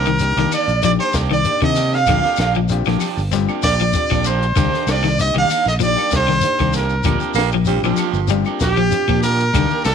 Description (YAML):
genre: afrobeat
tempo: 96 BPM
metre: 4/4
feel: swing 54% on 16ths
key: unclear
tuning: A4 = 445 Hz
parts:
  - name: brilliant trumpet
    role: melody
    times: 0.0-9.9 s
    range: G4 to F5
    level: -20 LUFS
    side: equal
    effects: none
  - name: mellow hollow pan flute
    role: second line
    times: 0.0-9.9 s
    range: G4 to F5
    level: -24 LUFS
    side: right 14 dB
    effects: tape echo
  - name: electric guitar at the edge of break-up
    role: stabs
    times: 0.0-9.9 s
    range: Eb3 to G4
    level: -26 LUFS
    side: right 14 dB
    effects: none
  - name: fingered electric bass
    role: bass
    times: 0.0-9.9 s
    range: G1 to C3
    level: -20 LUFS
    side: right 1 dB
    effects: none
  - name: shekere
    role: percussion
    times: 0.0-9.9 s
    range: none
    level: -28 LUFS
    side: left 5 dB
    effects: none
  - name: electric guitar at the edge of break-up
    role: arpeggios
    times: 0.1-9.7 s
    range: D3 to G3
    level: -22 LUFS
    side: left 13 dB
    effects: lush chorus
  - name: compact cocktail drum kit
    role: drums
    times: 0.1-9.9 s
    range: hi-hat, kick drum, snare drum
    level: -24 LUFS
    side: left 1 dB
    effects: none
  - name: overdriven reed electric piano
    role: accompaniment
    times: 0.2-9.9 s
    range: Eb3 to G4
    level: -28 LUFS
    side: left 12 dB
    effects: none
  - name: claves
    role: percussion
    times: 0.5-9.9 s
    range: none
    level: -34 LUFS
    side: left 14 dB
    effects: none
  - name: raspy baritone saxophone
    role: second line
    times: 7.4-8.4 s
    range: F3 to Bb3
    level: -22 LUFS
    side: right 15 dB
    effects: none
room: studio reverb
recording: 1960s-style stereo with parts hard left and right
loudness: -15 LUFS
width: side -7 dB against mid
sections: 0.0-9.9 A section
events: none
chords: 0.0 Cm9; 2.1 Bb6; 4.6 Cm9; 7.1 Bb6